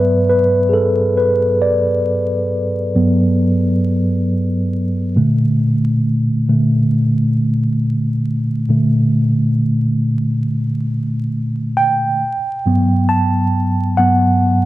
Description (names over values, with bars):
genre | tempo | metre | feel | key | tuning
hip hop | 68 BPM | 4/4 | swing 66% on 16ths | G major | A4 = 440 Hz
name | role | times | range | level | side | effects
mellow tine electric piano | solo | 0.0-14.7 s | G2 to A5 | -14 LUFS | equal | medium stereo tremolo, cassette tape, low-pass filter
room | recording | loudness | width
moderate small room reverb, RT60 0.6 s | dark, warm production, vinyl crackle | -14 LUFS | side -16 dB against mid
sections
0.0-14.7 A section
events
tine electric piano solo 0.0-14.7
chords
0.0 Gmaj7; 5.2 Bbmaj7; 12.2 Gmaj7